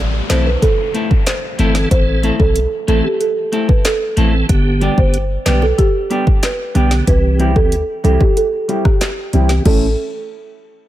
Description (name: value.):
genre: dancehall.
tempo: 93 BPM.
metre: 4/4.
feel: straight.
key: A minor.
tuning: A4 = 439 Hz.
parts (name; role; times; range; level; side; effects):
clean 808-style bass; bass; 0.0-10.0 s; G1 to D2; -16 LUFS; equal; none.
downlifter; sound effects; 0.0-4.5 s; none; -30 LUFS; left 2 dB; none.
folk marimba with soft mallets; melody; 0.3-10.0 s; G4 to C5; -19 LUFS; right 2 dB; low-pass filter, digital delay.
tonewheel organ; accompaniment; 0.3-9.9 s; D3 to A4; -20 LUFS; right 1 dB; overdrive, chorus vibrato, slow rotary speaker, low-pass filter.
clean electric guitar; arpeggios; 0.3-9.9 s; G3 to A4; -22 LUFS; left 2 dB; low-pass filter, digital delay.
afro-pop drum kit; drums; 0.3-9.8 s; crash cymbal, handclaps, hi-hat, kick drum, rim click, snare drum; -16 LUFS; equal; none.
bongos; percussion; 4.8-10.0 s; none; -25 LUFS; right 6 dB; none.
room: digital ambience.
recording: none.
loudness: -12 LUFS.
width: side -14 dB against mid.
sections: 0.0-9.7 A section; 9.7-10.9 B section.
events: filter sweep 0.0-9.7.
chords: 0.0 Am; 4.5 G; 7.1 C; 9.7 A.